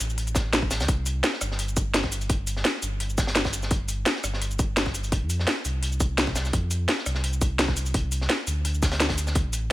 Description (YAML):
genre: liquid drum and bass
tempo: 170 BPM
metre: 4/4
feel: straight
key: unclear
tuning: A4 = 440 Hz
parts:
  - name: sub bass with octave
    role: bass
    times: 0.0-9.7 s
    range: G1 to F2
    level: -28 LUFS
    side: equal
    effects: none
  - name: crunchy breakbeat drum kit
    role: drums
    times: 0.0-9.6 s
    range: hi-hat, snare drum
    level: -32 LUFS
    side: equal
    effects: high-pass filter on hats, small room ambience, high-pass filter on snare, high-pass filter on room
  - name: drum and bass drum kit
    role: drums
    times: 0.0-9.6 s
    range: cabasa, hi-hat, rim click, snare drum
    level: -26 LUFS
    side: equal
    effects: small room ambience
  - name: electronic kick drum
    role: drums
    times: 0.4-9.4 s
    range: none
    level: -26 LUFS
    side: equal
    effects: small room ambience
room: studio reverb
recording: none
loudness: -23 LUFS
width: side -16 dB against mid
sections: 0.0-9.7 A section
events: none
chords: none